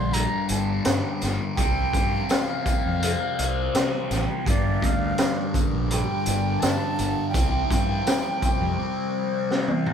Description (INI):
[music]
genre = psychedelic rock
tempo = 83 BPM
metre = 4/4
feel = straight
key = unclear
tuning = A4 = 440 Hz
[part]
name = mellow silver concert flute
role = melody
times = 0.0-9.4 s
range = D5 to C6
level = -30 LUFS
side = equal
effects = none
[part]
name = brassy analog pad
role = sustained chords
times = 0.0-9.9 s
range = F3 to Bb4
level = -36 LUFS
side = right 4 dB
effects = chorus
[part]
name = fuzz guitar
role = riff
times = 0.0-9.9 s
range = G2 to C4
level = -27 LUFS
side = left 2 dB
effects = distortion, phaser
[part]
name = fuzz fingered electric bass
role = bass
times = 0.0-8.7 s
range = G1 to C3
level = -28 LUFS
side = equal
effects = overdrive
[part]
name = raw garage drum kit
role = drums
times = 0.1-9.9 s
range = hi-hat, kick drum, snare drum, toms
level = -25 LUFS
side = equal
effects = none
[part]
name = tambourine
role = percussion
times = 0.5-8.6 s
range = none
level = -43 LUFS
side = left 6 dB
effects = none
[sound]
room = moderate large studio reverb, RT60 1.1 s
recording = band playing live in one room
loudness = -21 LUFS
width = side -8 dB against mid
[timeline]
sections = 0.0-9.9 A section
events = drum fill 9.5-9.9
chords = 0.0 Gm; 1.6 C7sus4; 4.5 Gm; 7.3 C7sus4